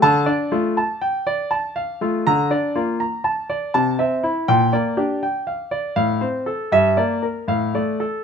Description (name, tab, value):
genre	classical, baroque-style suite movement for grand piano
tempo	80 BPM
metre	3/4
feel	rubato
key	D minor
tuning	A4 = 436 Hz
part	clear grand piano	solo	0.0-8.2 s	G2 to Bb5	-18 LUFS	equal	none
room	light reverb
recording	close, detailed microphones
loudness	-18 LUFS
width	side -6 dB against mid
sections	0.0-8.2 A section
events	none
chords	0.0 Dm; 2.3 Bb/D; 3.7 Am/C; 4.5 Gm/Bb; 6.0 F/A; 6.7 Em7b5/G; 7.5 Dm/A